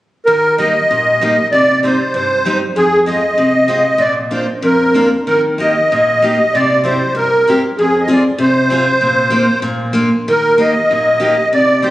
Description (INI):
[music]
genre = alpine folk, alpine dance band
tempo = 96 BPM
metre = 2/4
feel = rubato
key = Eb major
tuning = A4 = 440 Hz
[part]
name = musette accordion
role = melody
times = 0.3-11.9 s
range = Ab4 to Eb5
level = -12 LUFS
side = equal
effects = none
[part]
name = picked steel-string acoustic guitar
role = accompaniment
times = 0.3-11.9 s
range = F2 to Ab4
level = -16 LUFS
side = equal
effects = none
[sound]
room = wet concert hall reverb, RT60 2.0 s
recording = recorded on a phone in the room, club reverb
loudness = -11 LUFS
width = side -15 dB against mid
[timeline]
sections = 0.3-11.9 A section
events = none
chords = 0.3 Eb; 1.5 Cm; 2.8 Fm; 4.0 Bb; 5.3 Eb; 6.5 C; 7.8 Fm; 9.0 Bbsus4; 9.6 Bb; 10.3 Eb